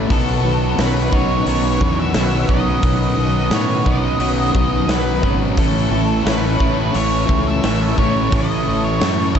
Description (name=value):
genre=rock, shoegaze and dream pop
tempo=88 BPM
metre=4/4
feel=straight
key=unclear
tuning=A4 = 441 Hz
part: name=warm analog pad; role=sustained chords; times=0.0-9.4 s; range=D#3 to D#6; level=-28 LUFS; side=equal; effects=chorus, tremolo
part: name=direct-recorded clean electric guitar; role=arpeggios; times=0.0-9.4 s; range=D#3 to F#4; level=-29 LUFS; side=left 8 dB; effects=lush chorus, analog delay
part: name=overdriven electric guitar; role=riff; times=0.0-9.4 s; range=A2 to E4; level=-24 LUFS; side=right 11 dB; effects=reverse reverb
part: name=sludgy distorted guitar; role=riff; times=0.0-9.4 s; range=A2 to B3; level=-25 LUFS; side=left 1 dB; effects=overdrive
part: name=thick fuzz guitar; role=riff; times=0.0-9.4 s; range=A2 to E4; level=-23 LUFS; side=left 8 dB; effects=distortion, wide subtle chorus
part: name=fuzz fingered electric bass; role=bass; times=0.0-9.4 s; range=G#1 to A2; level=-21 LUFS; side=equal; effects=overdrive
part: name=octave-fuzz lead guitar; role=melody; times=0.1-9.4 s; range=A4 to E5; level=-24 LUFS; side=right 1 dB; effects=distortion, analog delay
part: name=big rock drum kit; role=drums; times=0.1-9.4 s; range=hi-hat, kick drum, snare drum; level=-21 LUFS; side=equal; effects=none
room=light reverb, small room ambience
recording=dark, warm production, nothing above 8.0 kHz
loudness=-15 LUFS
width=side -8 dB against mid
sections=0.0-9.4 A section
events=none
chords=0.1 Badd9; 5.6 A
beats=| 0.10 0.79 1.47 2.15 | 2.84 3.52 4.21 4.89 | 5.58 6.26 6.95 7.63 | 8.32 9.00